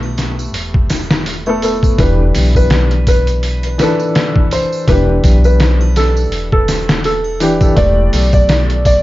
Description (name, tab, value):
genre	trip hop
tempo	83 BPM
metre	4/4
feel	swing 56% on 16ths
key	E minor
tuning	A4 = 439 Hz
part	warm upright piano	accompaniment	0.0-9.0 s	E3 to A4	-19 LUFS	left 1 dB	tremolo, tape echo
part	upright bass	bass	0.0-9.0 s	E1 to B1	-14 LUFS	equal	none
part	triangle and tambourine	percussion	0.0-9.0 s	none	-31 LUFS	right 3 dB	none
part	trip hop sampler-style drum kit	drums	0.2-9.0 s	hi-hat, kick drum, snare drum	-15 LUFS	equal	none
part	felt-muted upright piano	melody	2.0-9.0 s	A4 to D5	-17 LUFS	equal	dub echo
room	light reverb, small room ambience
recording	echo-heavy mix, vinyl crackle, nothing above 7.5 kHz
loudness	-11 LUFS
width	side -16 dB against mid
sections	0.0-9.0 A section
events	none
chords	0.0 Gadd9/E; 2.0 Em7; 7.8 Gadd9/E